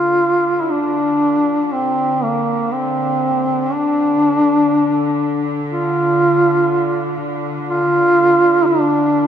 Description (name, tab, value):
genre	caucasian folk, Caucasian lament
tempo	free time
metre	none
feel	none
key	D minor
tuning	A4 = 438 Hz
part	mellow duduk	melody	0.0-9.3 s	Bb3 to F4	-14 LUFS	equal	none
part	rich studio cello section	drone	0.0-9.3 s	D3	-24 LUFS	right 2 dB	none
room	wet cathedral reverb, RT60 4.9 s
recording	minimal, uncompressed stereo recording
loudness	-14 LUFS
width	side -9 dB against mid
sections	0.0-9.3 A section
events	none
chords	none